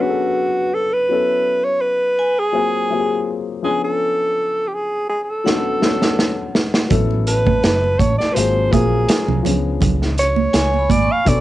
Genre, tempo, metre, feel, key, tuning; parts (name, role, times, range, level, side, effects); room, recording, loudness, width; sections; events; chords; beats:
lush 1970s-style soul; 82 BPM; 4/4; swing 54% on 16ths; A4 = 440 Hz
clear alto saxophone; melody; 0.0-11.4 s; F#4 to E#5; -18 LUFS; right 1 dB; cassette tape
dark baby grand piano; accompaniment; 0.0-11.4 s; E#3 to G#5; -24 LUFS; left 7 dB; cassette tape
vibraphone with hard mallets; texture; 0.0-11.4 s; B4 to C#6; -28 LUFS; equal; cassette tape
vintage drum kit; drums; 5.5-11.4 s; hi-hat, kick drum, snare drum; -18 LUFS; right 1 dB
hollow-body short-scale fingered electric bass; bass; 6.9-11.4 s; F#1 to C#2; -20 LUFS; right 1 dB
congas; percussion; 6.9-11.1 s; -23 LUFS; right 9 dB
light reverb; home recording on cassette, nothing above 10.5 kHz; -15 LUFS; side -15 dB against mid
0.0-11.4 A section
drum fill 5.5-6.9
0.0 Bm9; 1.1 A69; 2.5 G#13; 3.6 C#7b9; 5.5 Bm9; 6.9 A69; 8.4 G#13; 9.5 C#7b9
0.36 | 1.09 1.82 2.54 3.27 | 4.00 4.72 5.45 6.18 | 6.91 7.63 8.36 9.09 | 9.81 10.54 11.27